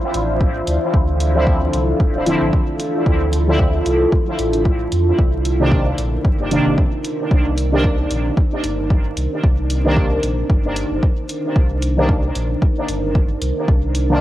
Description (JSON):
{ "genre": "dub techno", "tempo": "113 BPM", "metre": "4/4", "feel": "swing 55% on 16ths", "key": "unclear", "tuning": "A4 = 439 Hz", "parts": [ { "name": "deep dark ambient pad", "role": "sustained chords", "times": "0.0-14.2 s", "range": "D4 to D5", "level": "-22 LUFS", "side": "equal", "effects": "chorus, built-in reverb, sidechain pumping, cassette tape" }, { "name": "warm sub bass", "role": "bass", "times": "0.1-14.2 s", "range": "D1 to F2", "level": "-20 LUFS", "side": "equal", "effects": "tube saturation, sidechain pumping" }, { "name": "electronic hi-hat", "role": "drums", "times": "0.1-14.1 s", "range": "none", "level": "-31 LUFS", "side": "equal", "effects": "cassette tape" }, { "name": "electronic kick drum", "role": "drums", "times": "0.4-13.8 s", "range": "none", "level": "-16 LUFS", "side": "equal", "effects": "cassette tape" }, { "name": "resonant sweep polysynth", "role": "stabs", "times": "1.3-14.2 s", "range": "C3 to E4", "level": "-22 LUFS", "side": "equal", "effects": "chorus, phaser, sidechain pumping, cassette tape, dub echo" } ], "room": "light reverb, digital ambience", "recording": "home recording on cassette, vinyl crackle", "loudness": "-15 LUFS", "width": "side -14 dB against mid", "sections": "0.0-14.2 A section", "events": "none", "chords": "0.0 Dm9; 5.2 Cm9" }